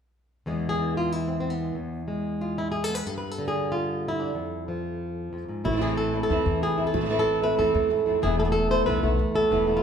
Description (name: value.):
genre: flamenco.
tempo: free time.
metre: none.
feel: none.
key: E phrygian dominant.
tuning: A4 = 435 Hz.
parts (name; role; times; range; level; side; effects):
flamenco guitar; melody; 0.5-9.8 s; E2 to C5; -24 LUFS; right 1 dB; none.
flamenco guitar; stabs; 5.7-9.8 s; E3 to E4; -28 LUFS; left 1 dB; none.
upright bass; bass; 5.7-9.8 s; E1 to E2; -29 LUFS; left 1 dB; none.
room: moderate recital hall reverb, RT60 1.4 s.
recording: recorded in a church or concert hall, faint mains hum.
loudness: -23 LUFS.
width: side -7 dB against mid.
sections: 0.5-5.6 A section; 5.6-9.8 B section.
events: none.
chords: 0.5 E; 3.1 G5; 4.4 N.C.; 5.6 Am; 8.2 Esus4.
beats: free time.